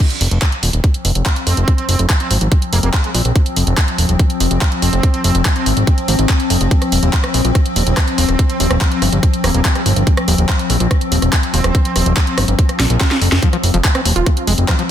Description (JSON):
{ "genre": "psychedelic trance", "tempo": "143 BPM", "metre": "4/4", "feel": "straight", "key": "unclear", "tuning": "A4 = 445 Hz", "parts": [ { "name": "evolving wavetable pad", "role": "sustained chords", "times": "0.7-14.9 s", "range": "F3 to C4", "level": "-20 LUFS", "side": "left 3 dB", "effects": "chorus, built-in reverb, sidechain pumping" }, { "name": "electronic kick drum", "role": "drums", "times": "0.0-14.8 s", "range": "none", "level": "-14 LUFS", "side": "equal", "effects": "overdrive, small room ambience" }, { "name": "garage drum kit", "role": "drums", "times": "0.0-14.9 s", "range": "crash cymbal, handclaps, hi-hat, rim click, snare drum", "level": "-19 LUFS", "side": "right 1 dB", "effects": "overdrive, small room ambience" }, { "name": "fat analog bass", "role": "bass", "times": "0.2-14.7 s", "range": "Eb1 to Bb1", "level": "-15 LUFS", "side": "equal", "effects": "none" }, { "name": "metallic wobble bass", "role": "second line", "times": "1.5-12.4 s", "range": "G3 to C4", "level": "-26 LUFS", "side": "right 5 dB", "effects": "chorus, sidechain pumping, high-pass filter, digital delay" }, { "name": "swell", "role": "sound effects", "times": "12.7-13.4 s", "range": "none", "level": "-29 LUFS", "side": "left 1 dB", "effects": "none" }, { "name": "overdriven acid bass", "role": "riff", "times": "13.4-14.8 s", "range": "F3 to F4", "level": "-22 LUFS", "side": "moving between left 7 dB and right 3 dB", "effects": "distortion, auto-pan, sidechain pumping, dub echo" } ], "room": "little or no reverb", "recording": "dense, heavily limited modern master", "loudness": "-12 LUFS", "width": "side -10 dB against mid", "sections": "0.0-14.9 A section", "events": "drum fill 12.8-13.4", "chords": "0.0 F5; 6.7 Eb5; 13.4 F5" }